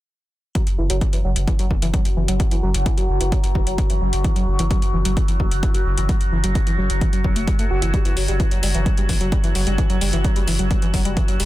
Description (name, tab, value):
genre	driving peak-time techno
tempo	130 BPM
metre	4/4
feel	straight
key	unclear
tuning	A4 = 444 Hz
part	overdriven synth lead	riff	0.6-11.4 s	E3 to F#4	-26 LUFS	equal	chorus, sidechain pumping, dub echo
part	overtone-sweeping drone	drone	1.3-11.5 s	F#3 to F#4	-28 LUFS	left 2 dB	chorus, built-in reverb, sidechain pumping
part	electronic hi-hat	drums	0.6-11.5 s	none	-29 LUFS	left 2 dB	sidechain pumping on hats
part	electronic kick drum	drums	0.6-11.3 s	none	-20 LUFS	equal	none
part	saturated sub bass	bass	0.7-11.5 s	F#1	-22 LUFS	equal	sidechain pumping, low-pass filter
room	digital ambience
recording	dense, heavily limited modern master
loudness	-17 LUFS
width	side -16 dB against mid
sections	0.6-11.5 A section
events	none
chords	none